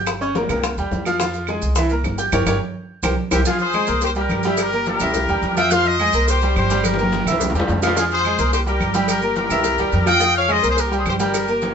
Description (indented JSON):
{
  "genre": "latin, salsa",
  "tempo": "213 BPM",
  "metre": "4/4",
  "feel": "straight",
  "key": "unclear",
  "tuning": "A4 = 440 Hz",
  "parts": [
    { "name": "bright grand piano", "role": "accompaniment", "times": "0.0-11.7 s", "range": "E3 to G6", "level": "-21 LUFS", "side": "right 1 dB", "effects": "none" },
    { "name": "upright bass", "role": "bass", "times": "0.0-11.7 s", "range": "G1 to F2", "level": "-24 LUFS", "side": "equal", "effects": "none" },
    { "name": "bongos and cowbell", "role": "percussion", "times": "0.1-11.7 s", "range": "none", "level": "-28 LUFS", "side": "left 5 dB", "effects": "none" },
    { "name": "claves", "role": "percussion", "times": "0.1-11.5 s", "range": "none", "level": "-30 LUFS", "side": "right 7 dB", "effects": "none" },
    { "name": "congas", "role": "percussion", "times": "0.1-11.7 s", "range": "none", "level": "-26 LUFS", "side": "right 1 dB", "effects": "none" },
    { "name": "maracas", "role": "percussion", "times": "0.1-11.7 s", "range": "none", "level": "-31 LUFS", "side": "right 5 dB", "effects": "none" },
    { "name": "warm horn section", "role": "melody", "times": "3.3-11.7 s", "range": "E4 to G5", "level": "-20 LUFS", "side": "left 2 dB", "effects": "none" }
  ],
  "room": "moderate studio reverb, RT60 0.6 s",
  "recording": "band playing live in one room, nothing above 7.9 kHz",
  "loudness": "-16 LUFS",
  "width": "side -7 dB against mid",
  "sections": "0.0-3.5 A section; 3.5-11.7 B section",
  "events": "band accent 2.3-3.5; drum fill 6.8-8.0",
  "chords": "0.1 Gdim; 0.6 C7; 1.2 Fm; 1.8 C7; 2.3 Gdim; 2.9 C7(no3); 3.5 Fm; 4.0 C7; 5.7 Fm7; 6.3 C5; 6.8 Gm6; 7.4 C; 8.0 Fm; 8.5 C7; 10.2 Fm7; 10.8 C5"
}